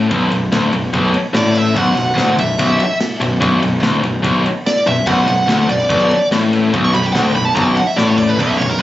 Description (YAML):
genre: heavy metal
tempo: 145 BPM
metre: 4/4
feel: straight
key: B minor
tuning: A4 = 438 Hz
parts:
  - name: heavy high-gain guitar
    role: riff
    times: 0.0-8.8 s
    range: B1 to A2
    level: -14 LUFS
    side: left 2 dB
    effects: distortion
  - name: fuzz fingered electric bass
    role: bass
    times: 0.0-8.8 s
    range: B0 to A1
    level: -22 LUFS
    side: right 1 dB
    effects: overdrive
  - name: tight metal drum kit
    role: drums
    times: 0.1-8.7 s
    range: crash cymbal, kick drum, ride cymbal, snare drum, toms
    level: -23 LUFS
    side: right 1 dB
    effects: none
  - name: nasal lead guitar with a parked wah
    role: melody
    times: 1.4-8.8 s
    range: A#4 to C#6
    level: -17 LUFS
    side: right 2 dB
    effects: overdrive, ping-pong delay
  - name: high-gain distorted guitar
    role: riff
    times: 8.4-8.8 s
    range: B1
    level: -21 LUFS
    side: right 7 dB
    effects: distortion
room: light reverb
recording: recorded on a phone in the room, club reverb, nothing above 7.8 kHz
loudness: -12 LUFS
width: side -14 dB against mid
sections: 0.0-8.8 A section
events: lead electric guitar solo 0.0-8.8; drum fill 8.0-8.4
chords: 0.0 Bm